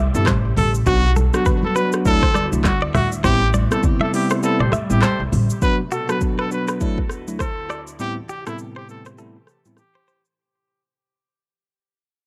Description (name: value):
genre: afrobeats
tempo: 101 BPM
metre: 4/4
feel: swing 58% on 16ths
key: A dorian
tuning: A4 = 441 Hz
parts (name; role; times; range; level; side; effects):
- glassy FM pad; sustained chords; 0.1-10.3 s; A2 to G4; -33 LUFS; equal; ensemble chorus, built-in reverb
- direct-recorded clean electric guitar; riff; 0.0-10.2 s; F#4 to E5; -30 LUFS; equal; spring reverb
- upright bass; bass; 0.0-5.5 s; G1 to D2; -22 LUFS; equal; none
- bell-like tine electric piano; accompaniment; 0.1-9.8 s; A2 to F#4; -26 LUFS; equal; none
- afro-pop drum kit; drums; 0.1-10.4 s; handclaps, hi-hat, kick drum, rim click, shaker, toms; -25 LUFS; equal; none
- bright trumpet; melody; 0.2-10.2 s; E4 to B4; -26 LUFS; equal; tape echo
- congas; percussion; 0.3-5.5 s; none; -28 LUFS; equal; none
- clear horn section; second line; 4.6-5.2 s; C4 to C5; -28 LUFS; equal; none
room: little or no reverb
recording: dry, gritty hardware recording, cassette tape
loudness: -19 LUFS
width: mono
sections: 0.0-5.6 A section; 5.6-10.4 B section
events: band accent 3.2-5.6; kick muted 4.4-5.6; fade-out 5.6-10.4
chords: 0.0 Am7; 0.9 Bm; 2.1 Dadd9; 3.2 Am7; 5.6 Bm; 6.8 Dadd9; 8.0 Am7